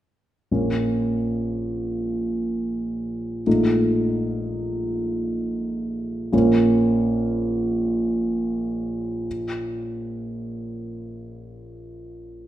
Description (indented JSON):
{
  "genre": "classical",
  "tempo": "41 BPM (dotted quarters)",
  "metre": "6/8",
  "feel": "uneven beats, rubato",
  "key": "Bb minor",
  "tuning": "A4 = 436 Hz",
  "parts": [
    { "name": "dark baby grand piano", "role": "accompaniment", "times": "0.5-12.5 s", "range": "Bb1 to F4", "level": "-22 LUFS", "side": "equal", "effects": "none" }
  ],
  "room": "wet recital hall reverb, RT60 1.4 s",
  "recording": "minimal, uncompressed stereo recording",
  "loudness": "-21 LUFS",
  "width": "side -13 dB against mid",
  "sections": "0.5-12.5 A section",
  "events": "none",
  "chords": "0.5 Bbm; 3.5 F7/Bb; 6.3 Bbm"
}